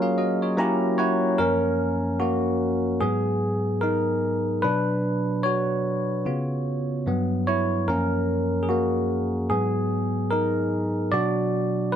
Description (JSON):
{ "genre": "R&B", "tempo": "74 BPM", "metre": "4/4", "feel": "swing 61% on 16ths", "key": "F# major", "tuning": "A4 = 440 Hz", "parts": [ { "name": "bell-like tine electric piano", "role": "solo", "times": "0.0-12.0 s", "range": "F#2 to A#5", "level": "-22 LUFS", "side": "equal", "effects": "wide subtle chorus" } ], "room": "light reverb", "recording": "dry, close 1970s-style studio recording", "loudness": "-22 LUFS", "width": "side -9 dB against mid", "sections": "0.0-1.4 A section; 1.4-12.0 B section", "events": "tine electric piano fill 0.2-1.4; tine electric piano solo 1.4-12.0", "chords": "0.0 F#maj9; 0.6 F#7b9; 1.4 F#maj7; 3.0 G#m9; 4.6 Bmadd9; 6.3 C#7; 7.1 G6; 7.9 F#maj7; 9.5 G#m9; 11.1 Bm" }